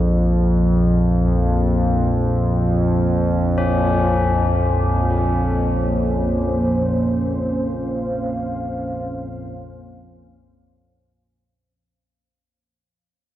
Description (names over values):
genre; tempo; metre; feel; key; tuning
dark ambient drone; free time; none; none; Bb minor; A4 = 440 Hz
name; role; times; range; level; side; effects
analog drone; drone; 0.0-11.8 s; Bb1 to F2; -18 LUFS; equal; chorus
dark analog pad; sustained chords; 3.6-11.7 s; Bb3 to F5; -24 LUFS; right 1 dB; chorus
tubular bells; arpeggios; 3.6-11.7 s; Db4; -25 LUFS; left 3 dB; tape echo
room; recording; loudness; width
wet huge ambient reverb, RT60 8.8 s; worn, warbling old tape, cassette tape, warbly pitch drift; -17 LUFS; side -13 dB against mid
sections
0.0-11.7 A section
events
fade-out 6.3-11.7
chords
0.0 Bbmadd9